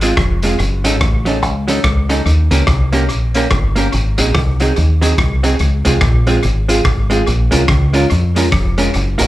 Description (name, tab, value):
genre	ska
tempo	144 BPM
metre	4/4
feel	swing 61% on 8ths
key	Db major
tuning	A4 = 440 Hz
part	vintage hollow-body jazz guitar	accompaniment	0.0-9.3 s	Gb3 to Bb4	-18 LUFS	right 2 dB	tape echo, slapback echo
part	deep dub fingered electric bass	bass	0.0-9.3 s	F1 to F2	-14 LUFS	equal	none
part	crunchy breakbeat drum kit	drums	0.0-9.3 s	hi-hat, kick drum, rim click	-18 LUFS	equal	tape echo
room	small room ambience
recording	live gig heard through the venue's PA, club ambience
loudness	-12 LUFS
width	side -15 dB against mid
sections	0.0-9.3 A section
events	none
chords	0.0 Dbmaj7 (rootless); 0.6 Gbm6; 2.3 Eb7; 3.9 Ab7; 5.6 Dbmaj7; 7.3 Bbm7